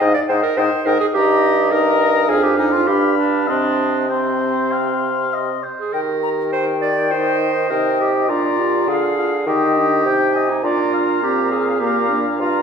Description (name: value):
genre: quick classical-period movement for wind quintet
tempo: 101 BPM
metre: 4/4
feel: uneven beats, rubato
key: C minor, Eb major from 5.9 s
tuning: A4 = 440 Hz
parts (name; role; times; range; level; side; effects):
- concert flute; melody; 0.0-12.6 s; F5 to C6; -24 LUFS; left 7 dB; none
- warm oboe; second line; 0.0-12.6 s; C5 to G5; -22 LUFS; left 6 dB; none
- clear clarinet; accompaniment; 0.0-12.6 s; C4 to Eb5; -19 LUFS; right 4 dB; none
- dark French horn; accompaniment; 0.0-12.6 s; Bb3 to G4; -24 LUFS; left 1 dB; none
- warm bassoon; bass; 0.0-12.6 s; F2 to Eb3; -22 LUFS; right 2 dB; none
room: wet recital hall reverb, RT60 1.6 s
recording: recorded in a church or concert hall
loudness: -15 LUFS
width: side -6 dB against mid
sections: 0.0-5.9 A section; 5.9-12.6 B section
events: none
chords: 0.0 Ab5; 1.2 Eb/G; 2.3 Ddim/F; 2.9 G7; 3.5 Cm; 5.9 Eb; 8.3 Bb7; 9.5 Eb; 10.6 Bb